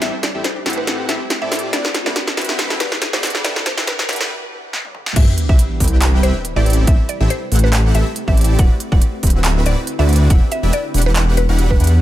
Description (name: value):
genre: future bass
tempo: 140 BPM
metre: 4/4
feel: swing 54% on 16ths, half-time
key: E minor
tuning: A4 = 436 Hz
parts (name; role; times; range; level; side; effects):
- mallet-like synth pluck; melody; 0.0-11.9 s; A4 to F#5; -26 LUFS; equal; chorus, sidechain pumping, tape echo
- shimmering ambient pad; sustained chords; 0.0-12.0 s; C3 to B4; -30 LUFS; equal; chorus, built-in reverb, sidechain pumping
- wide unison pluck; arpeggios; 0.0-4.3 s; D4 to C5; -31 LUFS; left 3 dB; none
- supersaw chords; riff; 0.0-11.9 s; C4 to G5; -25 LUFS; equal; sidechain pumping
- wide detuned saw bass; bass; 0.0-12.0 s; D1 to A2; -14 LUFS; equal; chorus, sidechain pumping
- big-room dance drum kit; drums; 0.0-12.0 s; crash cymbal, handclaps, hi-hat, snare drum, toms; -21 LUFS; equal; none
- riser and sub drop; sound effects; 0.0-6.9 s; none; -25 LUFS; equal; none
- electronic kick drum; drums; 5.2-11.8 s; none; -13 LUFS; equal; none
room: digital ambience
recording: high-pass filter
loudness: -14 LUFS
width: side -14 dB against mid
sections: 0.0-5.2 A section; 5.2-12.0 B section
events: build-up 0.0-5.2; drum fill 0.0-4.3, 4.7-5.2; filter sweep on ambient pad 0.0-5.2; break 4.3-5.2; drop 5.2-12.0; impact 5.2-6.9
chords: 0.0 Am7; 1.7 D13; 3.4 Em7; 5.2 Cmaj7; 6.7 Am7; 8.6 D13; 10.3 Em7